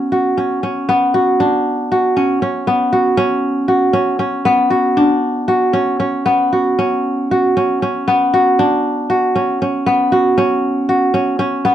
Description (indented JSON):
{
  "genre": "contemporary instrumental, contemporary",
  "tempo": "235 BPM (eighths)",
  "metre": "7/8",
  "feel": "straight",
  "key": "unclear",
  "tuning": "A4 = 440 Hz",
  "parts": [
    { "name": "kora", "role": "solo", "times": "0.0-11.7 s", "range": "B3 to F#4", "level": "-13 LUFS", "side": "equal", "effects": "none" }
  ],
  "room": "light reverb",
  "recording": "dark, warm production, nothing above 10.9 kHz",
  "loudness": "-13 LUFS",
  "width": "side -11 dB against mid",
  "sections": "0.0-11.7 A section",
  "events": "none",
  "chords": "0.0 F#5; 1.4 D; 3.2 F#5; 5.0 D; 6.8 F#5; 8.6 D; 10.4 B5",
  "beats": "0.11 0.37 0.63 0.88 1.14 | 1.40 1.65 1.91 2.16 2.42 2.67 2.92 | 3.17 3.43 3.68 3.94 4.19 4.45 4.71 | 4.96 5.22 5.48 5.74 6.00 6.26 6.52 | 6.78 7.04 7.30 7.56 7.82 8.07 8.33 | 8.59 8.84 9.10 9.35 9.61 9.86 10.12 | 10.37 10.62 10.88 11.13 11.39 11.64"
}